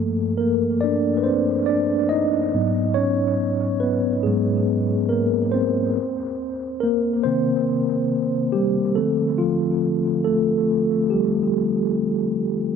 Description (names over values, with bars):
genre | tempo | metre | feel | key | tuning
R&B | 70 BPM | 4/4 | straight | unclear | A4 = 440 Hz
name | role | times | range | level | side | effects
mellow tine electric piano | solo | 0.0-12.8 s | G2 to Eb5 | -19 LUFS | equal | medium stereo tremolo, dub echo
room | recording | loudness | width
moderate echo chamber reverb, RT60 2.0 s | echo-heavy mix | -19 LUFS | side -6 dB against mid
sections
0.0-12.8 A section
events
tine electric piano solo 0.0-12.8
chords
0.0 Gm11; 2.5 Abm11; 6.0 Cm7; 9.0 Dm7